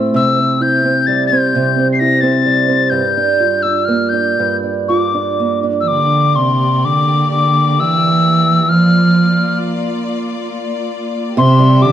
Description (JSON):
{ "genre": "celtic folk, Celtic slow air", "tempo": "57-67 BPM", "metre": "3/4", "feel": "rubato", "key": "G dorian", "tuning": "A4 = 441 Hz", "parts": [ { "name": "fingerpicked acoustic archtop guitar", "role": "accompaniment", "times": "0.0-6.5, 11.4-11.9 s", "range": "G2 to G4", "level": "-15 LUFS", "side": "right 3 dB", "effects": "none" }, { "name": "mellow hollow tin whistle", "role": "melody", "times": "0.2-11.9 s", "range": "C6 to C7", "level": "-15 LUFS", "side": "left 4 dB", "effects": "none" }, { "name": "dark cello", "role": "second line", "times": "5.8-11.9 s", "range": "C3 to F3", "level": "-13 LUFS", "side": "right 2 dB", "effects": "none" }, { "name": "clear chamber string section", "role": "sustained chords", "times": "5.9-11.9 s", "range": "Bb3 to E5", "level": "-22 LUFS", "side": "left 2 dB", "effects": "none" } ], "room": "moderate scoring stage reverb, RT60 1.8 s", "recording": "dark, warm production", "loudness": "-12 LUFS", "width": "side -10 dB against mid", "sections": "0.0-5.9 A section; 5.9-11.9 B section", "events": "none", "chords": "0.2 C; 2.9 Gm7; 5.9 Gm; 8.7 Bb; 11.4 C" }